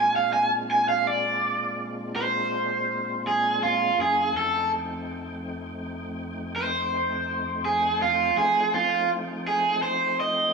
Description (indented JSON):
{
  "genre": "blues",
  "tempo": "55 BPM (dotted quarters)",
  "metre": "12/8",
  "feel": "straight",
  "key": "unclear",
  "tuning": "A4 = 440 Hz",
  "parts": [
    { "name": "overdriven semi-hollow guitar", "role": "melody", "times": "0.0-10.5 s", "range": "F4 to Ab5", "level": "-22 LUFS", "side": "right 2 dB", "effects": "none" },
    { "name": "tonewheel organ", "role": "sustained chords", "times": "0.0-10.5 s", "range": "F2 to G5", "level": "-32 LUFS", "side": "left 1 dB", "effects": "slow rotary speaker, overdrive, chorus vibrato" }
  ],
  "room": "moderate lush hall reverb, RT60 2.7 s",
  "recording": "rough home demo mix, small room ambience",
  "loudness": "-22 LUFS",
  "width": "side -4 dB against mid",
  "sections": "0.0-10.5 A section",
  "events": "overdriven electric guitar solo 0.0-10.5",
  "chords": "0.0 Bb7; 4.0 F7",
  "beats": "0.69 1.79 2.88 | 3.98 5.07 6.17 7.26 | 8.36 9.46"
}